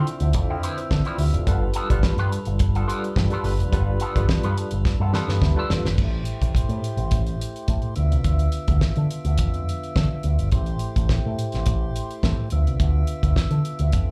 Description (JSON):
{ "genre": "disco", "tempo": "106 BPM", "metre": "4/4", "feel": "straight", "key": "D dorian", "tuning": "A4 = 440 Hz", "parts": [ { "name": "electric guitar with an envelope filter", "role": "accompaniment", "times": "0.0-5.9 s", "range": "F3 to B4", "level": "-34 LUFS", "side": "equal", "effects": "wah, subtle chorus, plate reverb, slapback echo" }, { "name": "tine electric piano", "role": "accompaniment", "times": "0.0-6.0 s", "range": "D3 to F5", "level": "-32 LUFS", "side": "equal", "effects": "medium tremolo, plate reverb, slapback echo" }, { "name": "mellow tonewheel organ", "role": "sustained chords", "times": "0.0-14.1 s", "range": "D3 to E5", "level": "-35 LUFS", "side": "equal", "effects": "slow rotary speaker, plate reverb" }, { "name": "picked electric bass with an envelope filter", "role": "bass", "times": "0.0-14.1 s", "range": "F1 to D3", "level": "-24 LUFS", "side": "equal", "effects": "none" }, { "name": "damped 70s drum kit", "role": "drums", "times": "0.1-14.1 s", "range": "crash cymbal, hi-hat, kick drum, snare drum", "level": "-25 LUFS", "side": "equal", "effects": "none" } ], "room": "little or no reverb", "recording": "live gig heard through the venue's PA, club reverb", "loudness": "-23 LUFS", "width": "mono", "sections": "0.0-6.0 A section; 6.0-14.1 B section", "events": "drum fill 4.8-6.0", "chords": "0.0 Dm9; 1.5 G9; 6.0 Am7; 8.0 Dm69; 10.5 Am7; 12.5 Dm69" }